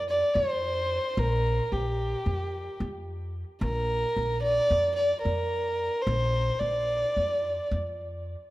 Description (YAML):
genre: Turkish makam ensemble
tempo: 220 BPM (eighths)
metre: 9/8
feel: straight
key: Bb makam rast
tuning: A4 = 441 Hz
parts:
  - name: dark violin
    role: melody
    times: 0.0-7.7 s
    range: G4 to D5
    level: -27 LUFS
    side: equal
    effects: analog delay
  - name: upright bass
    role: bass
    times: 0.0-8.3 s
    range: Bb1 to F2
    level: -30 LUFS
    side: equal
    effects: none
room: moderate recital hall reverb, RT60 1.3 s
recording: none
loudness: -25 LUFS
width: side -17 dB against mid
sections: 0.0-8.5 A section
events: none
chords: none